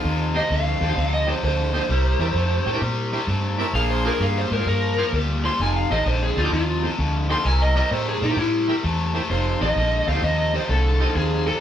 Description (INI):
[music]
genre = blues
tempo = 130 BPM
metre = 4/4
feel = swing 67% on 8ths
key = F mixolydian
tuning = A4 = 439 Hz
[part]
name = cranked stack guitar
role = riff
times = 0.0-11.6 s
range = F2 to A3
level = -26 LUFS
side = left 2 dB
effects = overdrive
[part]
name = warm horn section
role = stabs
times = 0.0-11.5 s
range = C4 to C5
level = -30 LUFS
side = right 2 dB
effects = none
[part]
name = vintage muted fingered electric bass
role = bass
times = 0.0-11.5 s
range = F1 to Bb2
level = -23 LUFS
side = equal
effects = none
[part]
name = bright tonewheel organ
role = accompaniment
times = 0.3-11.5 s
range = C4 to E5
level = -30 LUFS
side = right 3 dB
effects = overdrive, slow rotary speaker
[part]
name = lead guitar through a small cranked amp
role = melody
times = 0.4-11.6 s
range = Eb4 to C6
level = -24 LUFS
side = equal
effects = overdrive
[sound]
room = wet studio reverb, RT60 0.6 s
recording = band playing live in one room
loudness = -19 LUFS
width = side -10 dB against mid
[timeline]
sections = 0.0-9.3 A section; 9.3-11.6 B section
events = lead electric guitar solo 0.0-9.3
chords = 0.0 F7; 1.9 C7; 3.7 Bb7; 5.6 F7; 7.4 C7; 9.3 F7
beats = | 0.05 0.51 0.97 1.43 | 1.90 2.36 2.82 3.28 | 3.75 4.21 4.67 5.13 | 5.60 6.06 6.52 6.99 | 7.45 7.91 8.38 8.84 | 9.30 9.77 10.23 10.69 | 11.15